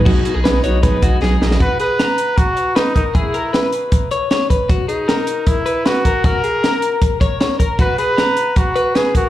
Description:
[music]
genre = jangly indie pop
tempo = 155 BPM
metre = 4/4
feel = straight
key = B major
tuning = A4 = 440 Hz
[part]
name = picked steel-string acoustic guitar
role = accompaniment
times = 0.0-1.6 s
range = B2 to D#4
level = -22 LUFS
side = right 4 dB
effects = slapback echo
[part]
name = twelve-string electric guitar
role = arpeggios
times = 0.0-9.3 s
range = F#4 to A#5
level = -20 LUFS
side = left 3 dB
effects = slapback echo, ping-pong delay
[part]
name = warm sub bass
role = bass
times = 0.0-1.6 s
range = A#1 to B1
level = -17 LUFS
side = equal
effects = none
[part]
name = overdriven combo organ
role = accompaniment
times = 0.1-1.6 s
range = B3 to A#4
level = -25 LUFS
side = right 3 dB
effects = slapback echo
[part]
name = compact cocktail drum kit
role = drums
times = 0.1-9.2 s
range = crash cymbal, hi-hat, kick drum, snare drum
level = -16 LUFS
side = equal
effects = none
[part]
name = bright trumpet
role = melody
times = 1.6-9.3 s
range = D#4 to B4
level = -19 LUFS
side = right 1 dB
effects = slapback echo, ping-pong delay
[sound]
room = light reverb, studio reverb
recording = live gig heard through the venue's PA, club reverb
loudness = -14 LUFS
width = side -13 dB against mid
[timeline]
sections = 0.1-1.6 A section; 1.6-9.3 B section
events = drum fill 1.2-1.6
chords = 0.1 B6; 1.6 B5; 3.1 E; 4.7 Emaj9#11/D#; 6.0 F# (rootless); 7.8 B5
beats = | 0.06 0.45 0.83 1.22 | 1.60 1.99 2.38 2.76 | 3.15 3.54 3.92 4.31 | 4.70 5.08 5.47 5.86 | 6.24 6.63 7.01 7.40 | 7.79 8.18 8.56 8.95

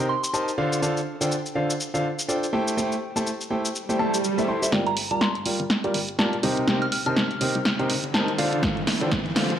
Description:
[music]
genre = piano house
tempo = 123 BPM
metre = 4/4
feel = swing 58% on 16ths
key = G minor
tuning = A4 = 440 Hz
[part]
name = clear concert grand piano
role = riff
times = 0.0-9.5 s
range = C3 to C6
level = -24 LUFS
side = equal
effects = sidechain pumping, low-pass filter
[part]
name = soft synth bell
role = melody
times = 0.1-0.3, 4.9-7.5 s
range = Bb5 to F6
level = -30 LUFS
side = right 2 dB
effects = chorus, phaser, digital delay
[part]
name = punchy analog drum machine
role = drums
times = 0.2-9.6 s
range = hi-hat, shaker, snare drum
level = -26 LUFS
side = equal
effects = studio reverb
[part]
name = swell and riser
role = sound effects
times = 3.9-9.6 s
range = none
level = -31 LUFS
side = right 1 dB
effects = none
[part]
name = organ-like FM bass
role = bass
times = 4.7-9.6 s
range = D1 to D2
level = -36 LUFS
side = left 1 dB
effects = sidechain pumping, high-pass filter
[part]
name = electronic kick drum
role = drums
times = 8.6-9.2 s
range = none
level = -30 LUFS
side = equal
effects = studio reverb
[sound]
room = wet plate reverb, RT60 1.3 s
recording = dark, warm production, high-pass filter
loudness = -22 LUFS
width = side -10 dB against mid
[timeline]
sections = 0.0-4.7 A section; 4.7-9.6 B section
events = swell 3.9-4.7; build-up 4.7-9.6; drum fill 4.7-9.6; riser 4.7-9.6; filter sweep on grand piano 4.7-9.6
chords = 0.0 Cm7; 0.6 Dm7; 2.5 Am7; 4.7 Gm7; 6.4 Cm7; 8.4 Dm7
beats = 0.34 | 0.82 1.31 1.80 2.29 | 2.77 3.26 3.75 4.24 | 4.73 5.21 5.70 6.19 | 6.68 7.17 7.65 8.14 | 8.63 9.12

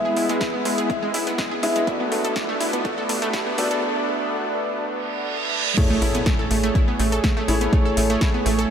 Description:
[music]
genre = progressive house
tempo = 123 BPM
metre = 4/4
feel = straight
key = A major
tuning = A4 = 441 Hz
[part]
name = warm analog pad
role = sustained chords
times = 0.0-8.7 s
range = G#3 to C#5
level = -27 LUFS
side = right 2 dB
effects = chorus, sidechain pumping
[part]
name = wide unison pluck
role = arpeggios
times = 0.0-8.6 s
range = G#3 to A4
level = -27 LUFS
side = right 1 dB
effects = cassette tape, sidechain pumping, tape echo
[part]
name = felt-muted upright piano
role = stabs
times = 0.0-8.7 s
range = A3 to E5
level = -26 LUFS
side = left 2 dB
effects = sidechain pumping, low-pass filter, tape echo
[part]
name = riser, reverse cymbal and impact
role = sound effects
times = 0.5-7.7 s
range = none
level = -30 LUFS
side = right 3 dB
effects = none
[part]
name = tight sequencer bass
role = bass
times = 0.2-8.7 s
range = A1 to E2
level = -26 LUFS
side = equal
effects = sidechain pumping, high-pass filter
[part]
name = deep house drum kit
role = drums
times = 0.2-8.7 s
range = crash cymbal, hi-hat, snare drum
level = -30 LUFS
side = left 1 dB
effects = overdrive, sidechain pumping on hats, high-pass filter on hats, high-pass filter on snare, sidechain pumping on cymbals, high-pass filter on cymbals, high-pass filter on room
[part]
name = electronic kick drum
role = drums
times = 0.4-8.3 s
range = none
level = -22 LUFS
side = equal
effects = overdrive
[sound]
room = wet huge ambient reverb, RT60 8.9 s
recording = dreamy mix soaked in reverb, high-pass filter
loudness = -19 LUFS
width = side -8 dB against mid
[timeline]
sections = 0.0-5.8 A section; 5.8-8.7 B section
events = build-up 0.0-5.8; filter sweep on felt piano 0.0-5.8; filter sweep 0.0-5.8; reverse cymbal 5.0-5.8; drop 5.8-8.7; impact 5.8-7.7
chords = 0.0 E; 1.9 Bm7; 5.8 Amaj7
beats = 0.41 0.90 1.39 | 1.87 2.36 2.85 3.34 | 3.83 4.31 4.80 5.29 | 5.78 6.26 6.75 7.24 | 7.73 8.21 8.70

